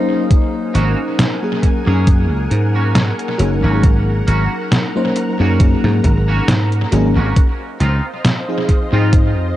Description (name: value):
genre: vaporwave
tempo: 68 BPM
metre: 4/4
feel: swing 55% on 16ths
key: unclear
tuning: A4 = 440 Hz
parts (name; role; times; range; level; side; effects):
- FM electric piano with soft pad layer; accompaniment; 0.0-9.6 s; F3 to C5; -20 LUFS; left 1 dB; tremolo, wide subtle chorus, tape echo
- soft string machine; sustained chords; 0.0-9.6 s; Ab4 to C6; -27 LUFS; equal; ensemble chorus, vintage 12-bit sampler grit
- detuned 8-bit digital drum machine; drums; 0.3-9.3 s; hi-hat, snare drum; -18 LUFS; equal; overdrive, vintage 12-bit sampler grit, tape echo
- electronic kick drum; drums; 0.3-9.3 s; none; -13 LUFS; equal; overdrive, vintage 12-bit sampler grit
- twangy electric guitar; riff; 0.7-9.1 s; Bb3 to Ab4; -25 LUFS; right 2 dB; analog chorus, tape echo
- dry thumbed slap bass; bass; 0.7-9.5 s; Gb1 to Ab2; -15 LUFS; equal; tube saturation
room: light reverb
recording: echo-heavy mix, cassette tape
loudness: -13 LUFS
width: side -14 dB against mid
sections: 0.0-9.6 A section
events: none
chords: 0.3 Ab9sus4; 7.4 Dbmaj9 (rootless)